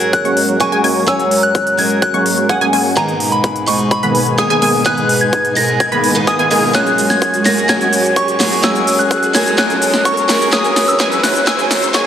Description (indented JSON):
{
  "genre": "EDM, festival progressive house",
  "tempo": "127 BPM",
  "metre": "4/4",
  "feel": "straight",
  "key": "F# mixolydian",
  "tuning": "A4 = 440 Hz",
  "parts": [
    { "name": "picked steel-string acoustic guitar", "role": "accompaniment", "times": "0.0-12.1 s", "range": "G#2 to C#5", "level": "-18 LUFS", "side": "right 1 dB", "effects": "vintage 12-bit sampler grit, sidechain pumping" },
    { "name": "lush unison pad", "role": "sustained chords", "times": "0.0-12.1 s", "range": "B2 to G#5", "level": "-22 LUFS", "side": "equal", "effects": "chorus, phaser, sidechain pumping" },
    { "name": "big-room dance drum kit", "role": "drums", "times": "0.0-12.0 s", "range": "hi-hat, shaker, snare drum", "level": "-19 LUFS", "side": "equal", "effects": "none" },
    { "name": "riser", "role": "sound effects", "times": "3.3-12.1 s", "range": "none", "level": "-27 LUFS", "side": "equal", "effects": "none" },
    { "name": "soft synth bell", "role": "melody", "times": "0.1-12.1 s", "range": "F#5 to A#6", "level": "-16 LUFS", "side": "left 1 dB", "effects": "chorus, dub echo" },
    { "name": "electronic kick drum", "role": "drums", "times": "0.1-12.0 s", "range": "none", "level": "-18 LUFS", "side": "equal", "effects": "overdrive, high-pass filter on kick" },
    { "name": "wide unison pluck", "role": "arpeggios", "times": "0.2-12.1 s", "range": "G#5 to C#6", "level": "-21 LUFS", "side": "equal", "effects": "phaser, sidechain pumping, dub echo" },
    { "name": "supersaw stab", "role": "riff", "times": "0.2-12.1 s", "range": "D#3 to C#5", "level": "-20 LUFS", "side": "equal", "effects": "sidechain pumping, low-pass filter" }
  ],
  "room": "wet lush hall reverb, RT60 1.9 s",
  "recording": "heavily compressed radio sound, high-pass filter",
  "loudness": "-11 LUFS",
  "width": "side -9 dB against mid",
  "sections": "0.0-12.1 A section",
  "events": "build-up 0.0-12.1; filter sweep on supersaw synth 0.0-12.1; riser 3.3-12.1; drum fill 6.7-12.1",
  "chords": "0.0 F#add9; 3.0 G#madd9; 6.7 F#add9; 10.5 C#madd9"
}